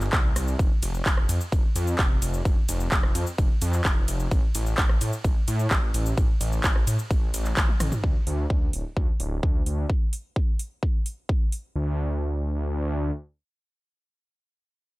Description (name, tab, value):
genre	EDM, festival progressive house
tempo	129 BPM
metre	4/4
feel	straight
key	unclear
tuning	A4 = 439 Hz
part	wide detuned saw bass	bass	0.0-13.1 s	D1 to A2	-26 LUFS	equal	chorus, sidechain pumping
part	big-room dance drum kit	drums	0.0-11.6 s	handclaps, hi-hat, ride cymbal, rim click, shaker, toms	-29 LUFS	equal	none
part	electronic kick drum	drums	0.1-11.4 s	none	-23 LUFS	equal	none
room	little or no reverb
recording	none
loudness	-22 LUFS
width	side -20 dB against mid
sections	0.0-8.0 A section; 8.0-11.8 B section; 11.8-15.0 C section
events	drop 0.0-8.0; drum fill 7.7-8.0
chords	none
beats	0.13 | 0.59 1.06 1.52 1.99 | 2.45 2.92 3.38 3.85 | 4.31 4.78 5.25 5.71 | 6.17 6.64 7.11 7.57 | 8.04 8.50 8.96 9.43 | 9.90 10.36 10.83 11.29 | 11.76 12.22 12.69